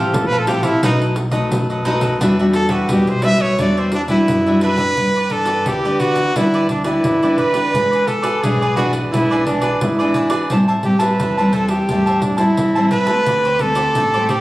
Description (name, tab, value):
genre	samba and choro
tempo	87 BPM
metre	4/4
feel	straight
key	E minor, G major from 5.0 s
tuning	A4 = 439 Hz
part	clear trumpet	melody	0.0-14.4 s	D4 to E5	-17 LUFS	right 1 dB	plate reverb
part	cavaquinho	accompaniment	0.0-14.4 s	D4 to A5	-22 LUFS	right 1 dB	none
part	nylon-string guitar	accompaniment	0.0-14.4 s	F#2 to B4	-19 LUFS	equal	none
part	upright bass	bass	0.0-14.4 s	A1 to A2	-26 LUFS	equal	none
part	pandeiro	percussion	0.1-14.4 s	none	-24 LUFS	equal	none
room	moderate studio ambience, RT60 0.5 s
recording	recorded on a phone in the room, studio reverb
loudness	-14 LUFS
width	side -17 dB against mid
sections	0.0-5.0 A section; 5.0-14.4 B section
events	trumpet solo 0.0-5.0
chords	0.0 Fmaj7/A; 0.8 B7; 2.2 Em9; 5.0 G6; 7.7 E7; 10.5 Am7; 13.3 D7sus4